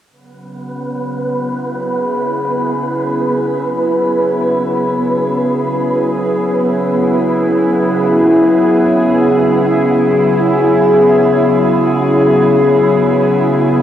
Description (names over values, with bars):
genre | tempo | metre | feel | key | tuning
ambient, sequencer-driven space music | free time | none | none | C# minor | A4 = 442 Hz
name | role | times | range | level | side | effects
evolving wavetable pad | sustained chords | 0.4-13.8 s | C#3 to G#4 | -12 LUFS | left 1 dB | chorus, built-in reverb, cassette tape, shimmer reverb
wind-like tuned noise texture | texture | 0.7-13.8 s | B3 to B4 | -18 LUFS | right 2 dB | built-in reverb, cassette tape, shimmer reverb
room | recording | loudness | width
wet spring reverb, RT60 2.2 s | home recording on cassette | -11 LUFS | side -10 dB against mid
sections
0.1-13.8 A section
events
none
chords
0.1 C#m